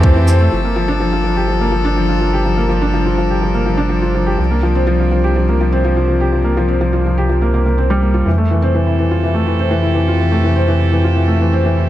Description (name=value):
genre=electronica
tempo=124 BPM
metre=4/4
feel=straight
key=G dorian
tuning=A4 = 441 Hz
part: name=warm string quartet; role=sustained chords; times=0.0-11.9 s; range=C3 to Bb4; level=-22 LUFS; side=right 1 dB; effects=sidechain pumping
part: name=felt-muted upright piano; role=riff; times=0.0-11.9 s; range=E3 to G4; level=-16 LUFS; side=left 1 dB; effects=digital delay
part: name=round analog bass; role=bass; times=0.0-11.9 s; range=G1 to F2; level=-16 LUFS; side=equal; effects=sidechain pumping
room=light reverb, studio ambience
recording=none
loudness=-12 LUFS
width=side -13 dB against mid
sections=0.5-11.9 A section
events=none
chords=0.0 Fmaj7; 0.5 Gm7; 4.4 C7sus4; 8.3 Fmaj7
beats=0.03 | 0.52 1.00 1.49 1.97 | 2.45 2.94 3.42 3.90 | 4.39 4.87 5.36 5.84 | 6.32 6.81 7.29 7.78 | 8.26 8.74 9.23 9.71 | 10.19 10.68 11.16 11.65